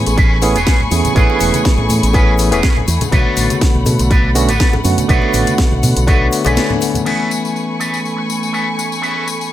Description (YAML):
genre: nu-disco, nu disco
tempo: 122 BPM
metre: 4/4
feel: swing 54% on 16ths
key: A major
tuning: A4 = 441 Hz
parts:
  - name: bright tine electric piano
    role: accompaniment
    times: 0.0-9.5 s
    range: D3 to G#5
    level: -18 LUFS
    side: moving between left 5 dB and right 7 dB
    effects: auto-pan, sidechain pumping, ping-pong delay
  - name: dark studio string section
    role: sustained chords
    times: 0.0-9.5 s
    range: A3 to C#6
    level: -22 LUFS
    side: left 2 dB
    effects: sidechain pumping
  - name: fingered electric bass with an envelope filter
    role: bass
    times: 0.0-6.6 s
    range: E1 to B2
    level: -16 LUFS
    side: equal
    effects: sidechain pumping
  - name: electric guitar with an envelope filter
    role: riff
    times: 0.1-9.3 s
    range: C#4 to B4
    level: -21 LUFS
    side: right 2 dB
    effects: analog chorus, low-pass filter, ping-pong delay
  - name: house drum kit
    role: drums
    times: 0.1-9.5 s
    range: crash cymbal, hi-hat, snare drum, tambourine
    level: -22 LUFS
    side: left 2 dB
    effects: none
  - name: egg shaker, bongos and congas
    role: percussion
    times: 0.1-7.0 s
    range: none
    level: -24 LUFS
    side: left 2 dB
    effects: none
  - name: electronic kick drum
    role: drums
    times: 0.2-6.2 s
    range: none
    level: -13 LUFS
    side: equal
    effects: none
room: light reverb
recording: none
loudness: -12 LUFS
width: side -13 dB against mid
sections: 0.0-7.1 A section; 7.1-9.5 B section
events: filter sweep on tine electric piano 0.0-7.1; break 6.6-7.1; band accent 6.6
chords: 0.0 Amaj9; 3.1 Bm7; 7.1 Amaj9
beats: 0.17 0.67 | 1.16 1.65 2.14 2.63 | 3.12 3.62 4.11 4.60 | 5.09 5.58 6.08 6.57 | 7.06 7.55 8.04 8.54 | 9.03 9.52